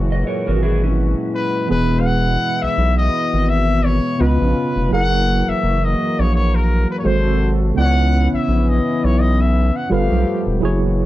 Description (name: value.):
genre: R&B.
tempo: 84 BPM.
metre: 4/4.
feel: swing 56% on 16ths.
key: unclear.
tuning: A4 = 441 Hz.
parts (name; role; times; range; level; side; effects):
tine electric piano; accompaniment; 0.0-11.1 s; C#3 to D#5; -22 LUFS; right 2 dB; medium stereo tremolo.
warm analog pad; sustained chords; 0.0-11.1 s; A#2 to A4; -23 LUFS; left 2 dB; chorus.
round analog bass; bass; 0.0-11.1 s; E1 to C#2; -17 LUFS; equal; none.
electric guitar through a small old amp; second line; 0.1-1.7 s; C#4 to D#5; -24 LUFS; right 1 dB; lush chorus.
warm trumpet; melody; 1.3-10.4 s; A#4 to F#5; -22 LUFS; left 2 dB; slapback echo.
room: little or no reverb.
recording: dry, close 1970s-style studio recording.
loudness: -15 LUFS.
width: side -15 dB against mid.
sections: 0.0-11.1 A section.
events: none.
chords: 0.0 F#9; 1.7 E; 4.2 C#9; 4.9 F#9; 7.0 G#7b9; 7.8 C#m7; 9.9 G9.